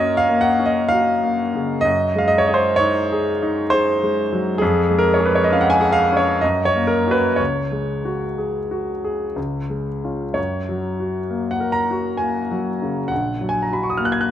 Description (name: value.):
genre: classical, romantic nocturne for solo piano.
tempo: 58-68 BPM.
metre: 3/4.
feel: rubato.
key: F# major.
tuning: A4 = 443 Hz.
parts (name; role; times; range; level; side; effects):
clear grand piano; solo; 0.0-14.3 s; A#1 to G#6; -17 LUFS; equal; none.
room: light reverb.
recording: close, detailed microphones.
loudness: -17 LUFS.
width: side -10 dB against mid.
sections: 0.0-14.3 A section.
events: none.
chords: 0.0 F#; 1.9 G#7/F#; 4.6 C#/E#; 6.4 F#; 7.4 C#sus4; 9.4 C#; 10.4 F#; 13.1 F#/A#.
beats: 0.92 | 1.85 2.80 3.72 | 4.62 5.50 6.43 | 7.39 8.38 9.37 | 10.37 11.29 12.20 | 13.11 14.00.